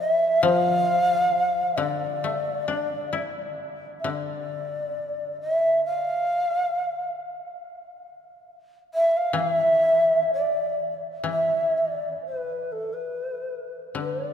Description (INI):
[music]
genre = japanese traditional, Japanese chamber music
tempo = 62-70 BPM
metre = 2/4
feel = rubato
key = D kumoi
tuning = A4 = 441 Hz
[part]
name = mellow long shakuhachi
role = melody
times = 0.0-14.3 s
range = A4 to F5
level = -23 LUFS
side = equal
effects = none
[part]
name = koto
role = accompaniment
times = 0.0-14.3 s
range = D3 to E4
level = -29 LUFS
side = left 4 dB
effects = none
[sound]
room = wet cathedral reverb, RT60 5.0 s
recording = none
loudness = -22 LUFS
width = side -8 dB against mid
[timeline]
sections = 0.0-11.3 A section; 11.3-14.3 B section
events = none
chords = none